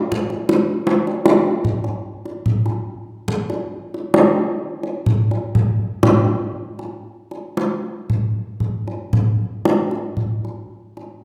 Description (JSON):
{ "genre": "gamelan", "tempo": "57-83 BPM", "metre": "4/4", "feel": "straight", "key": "none", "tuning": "none", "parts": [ { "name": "kendang", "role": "percussion", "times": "0.1-11.1 s", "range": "none", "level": "-20 LUFS", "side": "equal", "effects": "none" } ], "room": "wet recital hall reverb, RT60 1.4 s", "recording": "none", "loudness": "-20 LUFS", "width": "mono", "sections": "0.0-7.0 A section; 7.0-11.2 B section", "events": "none", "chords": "none" }